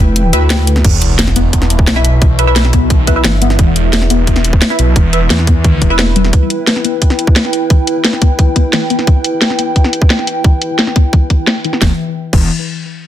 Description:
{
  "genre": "dark technical drum and bass",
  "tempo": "175 BPM",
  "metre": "4/4",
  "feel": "straight",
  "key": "E minor",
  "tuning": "A4 = 439 Hz",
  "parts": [
    { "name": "dark analog pad", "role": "sustained chords", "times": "0.0-12.0 s", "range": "E4 to G5", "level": "-19 LUFS", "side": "right 1 dB", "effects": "chorus, sidechain pumping" },
    { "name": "pulsing pluck wobble bass", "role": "bass", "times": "0.0-0.8 s", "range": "F1 to D2", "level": "-10 LUFS", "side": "equal", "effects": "distortion, chorus, tube saturation" },
    { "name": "drum and bass drum kit", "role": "drums", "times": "0.2-12.4 s", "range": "crash cymbal, hi-hat, snare drum", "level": "-15 LUFS", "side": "left 1 dB", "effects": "overdrive, low-pass filter on hats, low-pass filter on snare, low-pass filter on cymbals" },
    { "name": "filtered dub chord stab", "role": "stabs", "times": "0.3-6.0 s", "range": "E4 to E5", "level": "-18 LUFS", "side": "right 1 dB", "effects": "phaser, wide subtle chorus, ping-pong delay" },
    { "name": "soft round pluck", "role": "arpeggios", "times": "0.8-12.5 s", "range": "E3 to B3", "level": "-19 LUFS", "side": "left 5 dB", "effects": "wide subtle chorus, sidechain pumping, ping-pong delay" },
    { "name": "phased detuned saw bass", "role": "bass", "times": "0.8-6.3, 11.8-12.5 s", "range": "E1 to E2", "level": "-13 LUFS", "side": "equal", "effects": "phaser, overdrive, sidechain pumping" },
    { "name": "electronic kick drum", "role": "drums", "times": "0.8-12.4 s", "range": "none", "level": "-10 LUFS", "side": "equal", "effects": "overdrive" },
    { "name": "sub drop", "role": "sound effects", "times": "0.8-2.2 s", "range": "none", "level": "-18 LUFS", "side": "equal", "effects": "none" }
  ],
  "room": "digital ambience",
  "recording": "dense, heavily limited modern master",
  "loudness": "-9 LUFS",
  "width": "side -12 dB against mid",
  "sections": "0.8-11.8 A section; 11.8-13.1 B section",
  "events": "kick drops out 0.2-0.8; impact 0.8-2.2; filter sweep on synth pluck 0.8-11.8",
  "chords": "0.0 Em; 11.8 E5"
}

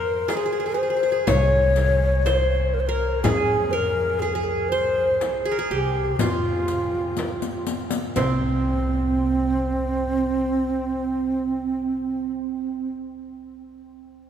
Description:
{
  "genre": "Turkish makam ensemble",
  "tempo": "122 BPM (eighths)",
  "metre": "10/8",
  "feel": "straight",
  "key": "unclear",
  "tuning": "A4 = 440 Hz",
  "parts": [
    { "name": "breathy mellow ney", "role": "melody", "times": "0.0-12.9 s", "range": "C4 to Db5", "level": "-23 LUFS", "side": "equal", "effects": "none" },
    { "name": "qanun", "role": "second line", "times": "0.0-12.9 s", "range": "C4 to Db5", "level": "-28 LUFS", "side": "right 4 dB", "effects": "none" },
    { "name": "upright bass", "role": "bass", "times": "0.0-12.9 s", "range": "C2 to F2", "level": "-26 LUFS", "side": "equal", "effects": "none" },
    { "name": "darbuka", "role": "percussion", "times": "0.3-8.6 s", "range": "none", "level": "-33 LUFS", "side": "left 1 dB", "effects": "none" },
    { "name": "frame drum", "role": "percussion", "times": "0.3-8.6 s", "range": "none", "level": "-33 LUFS", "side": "left 2 dB", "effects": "none" },
    { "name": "riq", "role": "percussion", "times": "0.3-8.6 s", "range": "none", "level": "-34 LUFS", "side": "left 4 dB", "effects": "none" }
  ],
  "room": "wet cathedral reverb, RT60 6.6 s",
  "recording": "recorded in a church or concert hall",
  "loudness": "-20 LUFS",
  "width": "side -8 dB against mid",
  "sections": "0.0-8.2 A section; 8.2-13.1 B section",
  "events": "drum fill 7.2-8.2",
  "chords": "none"
}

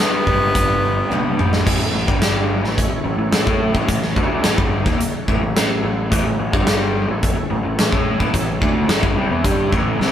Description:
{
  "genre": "classic rock",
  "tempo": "108 BPM",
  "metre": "4/4",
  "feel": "straight",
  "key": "A mixolydian",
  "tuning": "A4 = 440 Hz",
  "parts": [
    { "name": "edgy tenor saxophone", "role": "melody", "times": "0.0-1.6 s", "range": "B3", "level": "-20 LUFS", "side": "equal", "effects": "none" },
    { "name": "picked steel-string acoustic guitar", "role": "accompaniment", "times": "0.0-1.7 s", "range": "G2 to G4", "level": "-30 LUFS", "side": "right 4 dB", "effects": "none" },
    { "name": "tonewheel organ", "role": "sustained chords", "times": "0.0-10.1 s", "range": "G3 to D5", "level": "-30 LUFS", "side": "right 1 dB", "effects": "none" },
    { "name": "raw garage guitar", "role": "riff", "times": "0.0-10.1 s", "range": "G2 to A4", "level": "-22 LUFS", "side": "equal", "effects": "overdrive" },
    { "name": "fuzz picked electric bass", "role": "bass", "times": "0.3-10.1 s", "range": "G1 to A2", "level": "-23 LUFS", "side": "equal", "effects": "overdrive" },
    { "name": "big rock drum kit", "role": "drums", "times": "0.3-10.1 s", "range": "crash cymbal, hi-hat, kick drum, snare drum, toms", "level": "-19 LUFS", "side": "equal", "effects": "none" }
  ],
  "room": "light reverb",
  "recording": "band playing live in one room",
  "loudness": "-16 LUFS",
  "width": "side -10 dB against mid",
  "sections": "0.0-1.7 A section; 1.7-10.1 B section",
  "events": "tenor saxophone solo 0.0-1.7; drum fill 1.1-1.7",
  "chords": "0.0 G; 1.7 A; 2.1 G5; 2.6 A; 6.5 G5; 7.1 A"
}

